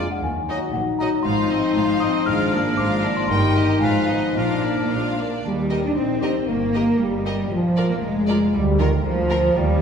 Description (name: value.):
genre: cinematic, playful, whimsical film cue.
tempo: 117 BPM.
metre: 2/4.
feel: straight.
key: Eb major.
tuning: A4 = 441 Hz.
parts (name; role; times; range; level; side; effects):
celesta; melody; 0.0-4.9 s; F5 to F6; -28 LUFS; left 3 dB; none.
clear chamber violin section; melody; 0.0-9.4 s; Bb4 to G5; -32 LUFS; left 2 dB; none.
clear oboe; second line; 0.0-5.2 s; Bb4 to Eb5; -30 LUFS; equal; none.
clear studio violin section; second line; 0.0-9.4 s; D4 to Bb4; -32 LUFS; left 1 dB; none.
dark clarinet; second line; 0.0-5.2 s; D4 to Eb4; -28 LUFS; left 2 dB; none.
dark bassoon; accompaniment; 0.0-5.2 s; Eb3 to Gb3; -31 LUFS; left 2 dB; none.
rich studio viola section; accompaniment; 0.0-9.4 s; G3 to G4; -31 LUFS; right 3 dB; none.
dark French horn section; sustained chords; 0.0-9.8 s; Eb3 to Eb4; -23 LUFS; left 1 dB; none.
concert harp; arpeggios; 0.0-9.8 s; G2 to G5; -27 LUFS; left 5 dB; none.
rich studio cello section; bass; 0.0-9.8 s; Eb2 to D4; -27 LUFS; right 2 dB; none.
warm studio double bass section; bass; 0.0-9.8 s; F1 to Eb2; -27 LUFS; right 3 dB; none.
room: wet scoring stage reverb, RT60 1.7 s.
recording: heard from further back in the room.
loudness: -18 LUFS.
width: side -7 dB against mid.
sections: 0.0-5.5 A section; 5.5-9.8 B section.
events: none.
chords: 0.2 Ebm; 1.3 Fm7/Ab; 2.3 Bb7/Ab; 3.3 Eb/G; 3.8 Fm7b5/Ab; 4.4 Bb; 5.5 Eb; 6.5 Eb/G; 7.5 Bb; 8.5 Bb/D.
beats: | 0.24 0.75 | 1.26 1.77 | 2.28 2.79 | 3.30 3.83 | 4.38 4.92 | 5.45 5.97 | 6.49 7.00 | 7.51 8.03 | 8.54 9.06 | 9.56.